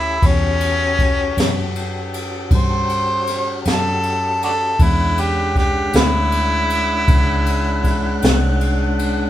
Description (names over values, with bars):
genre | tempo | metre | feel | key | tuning
slow blues | 52 BPM (dotted quarters) | 12/8 | straight | unclear | A4 = 442 Hz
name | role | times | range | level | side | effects
warm harmonica | melody | 0.0-8.2 s | C#4 to C5 | -19 LUFS | left 1 dB | overdrive
mellow tonewheel organ | sustained chords | 0.0-9.3 s | G#3 to F#5 | -25 LUFS | left 1 dB | slow rotary speaker
vintage muted fingered electric bass | bass | 0.0-9.3 s | C2 to G2 | -21 LUFS | equal | none
jazz brush drum kit | drums | 0.2-9.2 s | kick drum, ride cymbal, snare drum | -20 LUFS | equal | none
warm woodwind section | sustained chords | 4.8-9.3 s | E3 to D4 | -30 LUFS | equal | none
room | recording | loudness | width
light reverb | band playing live in one room | -15 LUFS | side -12 dB against mid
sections
0.0-9.3 A section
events
harmonica solo 0.0-9.3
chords
0.0 A13; 4.8 E13